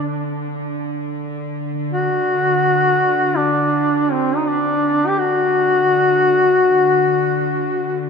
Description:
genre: caucasian folk, Caucasian lament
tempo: free time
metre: none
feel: none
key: D major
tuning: A4 = 440 Hz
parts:
  - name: warm duduk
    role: melody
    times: 0.0-8.1 s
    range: C4 to G4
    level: -16 LUFS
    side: left 1 dB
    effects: none
  - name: warm studio cello section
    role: drone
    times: 0.0-8.1 s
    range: D3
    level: -24 LUFS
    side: equal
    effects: none
room: wet cathedral reverb, RT60 4.6 s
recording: minimal, uncompressed stereo recording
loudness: -15 LUFS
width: side -5 dB against mid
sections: 0.0-8.1 A section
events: none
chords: none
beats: free time

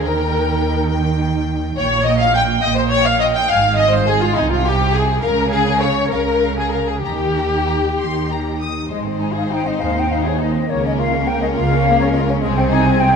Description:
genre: quick classical-period movement for symphony orchestra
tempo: 69 BPM (dotted quarters)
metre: 6/8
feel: rubato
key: Ab major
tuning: A4 = 442 Hz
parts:
  - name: rich chamber violin section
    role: melody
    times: 0.0-13.2 s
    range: Ab4 to Eb6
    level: -29 LUFS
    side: left 5 dB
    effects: none
  - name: rich symphonic violin section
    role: second line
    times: 0.0-13.2 s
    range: Ab3 to G5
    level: -19 LUFS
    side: left 4 dB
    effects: none
  - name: rich chamber viola section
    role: accompaniment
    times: 0.0-13.2 s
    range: Bb3 to G5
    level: -24 LUFS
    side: right 1 dB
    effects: none
  - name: bright chamber double bass section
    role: bass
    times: 0.0-13.2 s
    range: Ab1 to Eb2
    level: -22 LUFS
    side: right 4 dB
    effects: none
  - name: warm chamber cello section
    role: bass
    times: 0.0-13.2 s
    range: Eb2 to Eb3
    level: -22 LUFS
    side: right 4 dB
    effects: none
  - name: bright large flute ensemble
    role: second line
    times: 8.9-13.2 s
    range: Db5 to Ab5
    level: -20 LUFS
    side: left 2 dB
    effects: none
room: wet scoring stage reverb, RT60 1.7 s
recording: nothing above 10.8 kHz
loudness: -15 LUFS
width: side -6 dB against mid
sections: 0.0-8.9 A section; 8.9-13.2 B section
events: none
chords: 0.0 Eb; 1.8 Bbm6; 3.5 Ab6; 4.4 Ab/C; 5.2 Db; 7.0 Eb; 8.9 Ab; 10.7 Bbm/Db; 12.4 Ab/C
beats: | 0.03 0.90 | 1.77 2.64 | 3.50 4.37 | 5.23 6.12 | 7.05 7.99 | 8.92 9.81 | 10.69 11.56 | 12.44

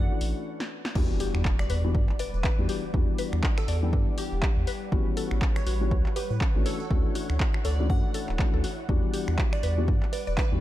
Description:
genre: deep house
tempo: 121 BPM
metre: 4/4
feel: swing 58% on 16ths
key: E dorian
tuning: A4 = 440 Hz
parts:
  - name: glassy wavetable pluck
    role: melody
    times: 0.0-10.6 s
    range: G4 to F#5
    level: -38 LUFS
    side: right 2 dB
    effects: chorus, dub echo
  - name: warm analog pad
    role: sustained chords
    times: 0.0-10.6 s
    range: G3 to F#5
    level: -41 LUFS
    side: left 1 dB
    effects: chorus, sidechain pumping
  - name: felt-muted upright piano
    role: stabs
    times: 0.0-10.6 s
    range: E3 to G4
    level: -33 LUFS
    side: left 4 dB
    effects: vintage 12-bit sampler grit, sidechain pumping, digital delay
  - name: round analog bass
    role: bass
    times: 0.0-10.6 s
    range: D1 to A2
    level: -27 LUFS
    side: equal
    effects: sidechain pumping
  - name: punchy analog drum machine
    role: drums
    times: 0.2-10.5 s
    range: crash cymbal, finger snaps, handclaps, hi-hat, snare drum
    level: -36 LUFS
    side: equal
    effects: none
  - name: mallet-like synth pluck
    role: arpeggios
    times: 1.0-10.4 s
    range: C#4 to D5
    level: -39 LUFS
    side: left 5 dB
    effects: chorus, sidechain pumping, dub echo
  - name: electronic kick drum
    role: drums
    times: 1.0-10.5 s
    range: none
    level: -26 LUFS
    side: equal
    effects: none
  - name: impact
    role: sound effects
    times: 1.0-2.9 s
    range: none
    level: -36 LUFS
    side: right 1 dB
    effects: none
room: little or no reverb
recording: dark, warm production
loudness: -24 LUFS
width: side -14 dB against mid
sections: 1.0-10.6 A section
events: break 0.5-1.0; drum fill 0.6-1.0; drop 1.0-10.6; impact 1.0-2.9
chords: 0.0 Dmaj7; 1.0 Em7; 4.9 A13; 6.7 Dmaj7; 8.9 Em7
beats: 0.46 | 0.95 1.45 1.95 2.44 | 2.94 3.43 3.93 4.43 | 4.92 5.42 5.91 6.41 | 6.91 7.40 7.90 8.39 | 8.89 9.38 9.88 10.38

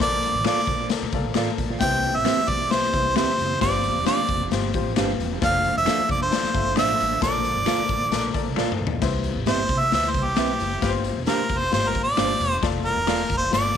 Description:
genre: uptempo 1960s-style soul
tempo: 133 BPM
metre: 4/4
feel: straight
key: C major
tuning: A4 = 440 Hz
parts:
  - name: bright harmonica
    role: melody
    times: 0.0-13.8 s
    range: G4 to G5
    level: -23 LUFS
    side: right 1 dB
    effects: none
  - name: warm upright piano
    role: accompaniment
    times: 0.0-13.8 s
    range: G2 to A5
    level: -31 LUFS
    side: left 10 dB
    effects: none
  - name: mellow tonewheel organ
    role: sustained chords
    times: 0.0-9.0 s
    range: D3 to C5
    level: -35 LUFS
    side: right 16 dB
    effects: fast rotary speaker, chorus vibrato
  - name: upright bass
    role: bass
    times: 0.0-13.8 s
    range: E1 to C3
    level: -30 LUFS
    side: right 2 dB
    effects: none
  - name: raw garage drum kit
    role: drums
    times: 0.0-13.8 s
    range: crash cymbal, hi-hat, kick drum, snare drum, toms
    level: -25 LUFS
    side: left 5 dB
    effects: none
  - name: finger snaps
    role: percussion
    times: 0.4-13.2 s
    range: none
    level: -36 LUFS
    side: left 12 dB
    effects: none
  - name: mellow electric guitar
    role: stabs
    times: 0.5-13.2 s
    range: C4 to F5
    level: -30 LUFS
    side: right 13 dB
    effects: tape echo
room: light reverb, small room ambience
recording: 1960s-style stereo with parts hard left and right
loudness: -20 LUFS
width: side -8 dB against mid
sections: 0.0-9.0 A section; 9.0-13.8 B section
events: upright piano fill 0.9-1.8; drum fill 8.6-9.0; harmonica solo 9.0-13.8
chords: 0.0 Bbmaj7; 1.8 Cmaj7; 3.6 G7sus4; 5.4 F6; 7.2 Bbmaj7; 9.0 Cmaj7; 10.8 G7sus4; 12.6 F6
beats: | 0.00 0.45 0.91 1.36 | 1.81 2.26 2.71 3.17 | 3.62 4.07 4.52 4.97 | 5.42 5.87 6.32 6.77 | 7.22 7.67 8.12 8.57 | 9.03 9.48 9.93 10.38 | 10.83 11.28 11.73 12.18 | 12.63 13.08 13.53

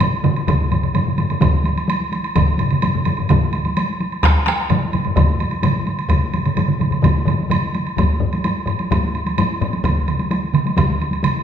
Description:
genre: japanese traditional, taiko drum ensemble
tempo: 128 BPM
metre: 4/4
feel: straight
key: none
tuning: none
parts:
  - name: solo taiko drums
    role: percussion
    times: 0.0-11.3 s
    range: none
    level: -23 LUFS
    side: equal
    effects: none
  - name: taiko ensemble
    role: percussion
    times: 0.0-9.7 s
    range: none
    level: -22 LUFS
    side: left 4 dB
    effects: none
  - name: taiko ensemble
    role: percussion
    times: 0.0-11.3 s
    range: none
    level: -20 LUFS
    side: right 3 dB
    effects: none
  - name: woodblock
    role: percussion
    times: 0.0-11.3 s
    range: none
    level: -24 LUFS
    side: right 3 dB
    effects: none
  - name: taiko ensemble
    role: percussion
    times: 0.5-10.9 s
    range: none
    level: -21 LUFS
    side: left 1 dB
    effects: none
room: wet recital hall reverb, RT60 1.4 s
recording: recorded in a church or concert hall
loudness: -16 LUFS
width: side -8 dB against mid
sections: 0.0-8.0 A section; 8.0-11.4 B section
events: none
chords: none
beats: 0.00 | 0.47 0.94 1.41 1.88 | 2.35 2.82 3.29 3.76 | 4.23 4.70 5.17 5.64 | 6.11 6.58 7.04 7.51 | 7.98 8.44 8.91 9.38 | 9.84 10.31 10.78 11.24

